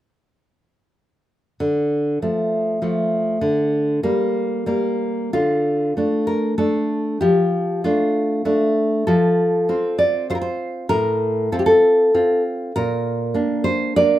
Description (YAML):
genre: romantic piece for solo classical guitar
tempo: 98 BPM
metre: 3/4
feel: rubato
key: D minor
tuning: A4 = 440 Hz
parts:
  - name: nylon-string guitar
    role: solo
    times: 1.6-14.2 s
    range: A2 to D5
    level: -17 LUFS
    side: equal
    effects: none
room: wet small room reverb, RT60 0.5 s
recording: rough home demo mix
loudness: -17 LUFS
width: side -13 dB against mid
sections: 1.6-5.3 A section; 5.3-14.2 B section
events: none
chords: 1.6 Dm; 3.4 Gm/D; 5.3 Dm; 7.2 Dm/F; 9.1 F; 10.9 F/A; 12.7 Bb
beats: | 1.60 2.22 2.81 | 3.42 4.04 4.67 | 5.34 5.98 6.60 | 7.22 7.84 8.45 | 9.07 9.68 10.29 | 10.90 11.51 12.12 | 12.74 13.34 13.95